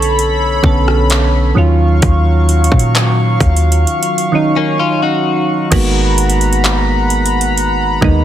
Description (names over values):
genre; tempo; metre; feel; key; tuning
contemporary R&B; 65 BPM; 4/4; straight; G# dorian; A4 = 437 Hz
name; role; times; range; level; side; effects
soft electric-piano-like synth keys; accompaniment; 0.0-8.2 s; D3 to A4; -16 LUFS; right 4 dB; chorus
chorused pulse-width pad; sustained chords; 0.0-8.2 s; F#3 to C#6; -18 LUFS; left 1 dB; none
clean 808-style bass; bass; 0.0-8.2 s; G#1 to A#2; -13 LUFS; equal; none
trap drum kit; drums; 0.0-8.2 s; crash cymbal, handclaps, hi-hat, kick drum, rim click; -16 LUFS; equal; overdrive
direct-recorded clean electric guitar; arpeggios; 4.6-5.7 s; A#3 to F#4; -16 LUFS; left 6 dB; lush chorus, digital delay
room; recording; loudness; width
little or no reverb; dense, heavily limited modern master; -10 LUFS; side -11 dB against mid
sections
0.0-5.7 A section; 5.7-8.2 A section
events
break 3.9-5.7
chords
0.0 Bm9; 1.6 D#m9; 5.7 G#m9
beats
0.18 1.10 | 2.03 2.95 3.87 4.79 | 5.72 6.64 7.56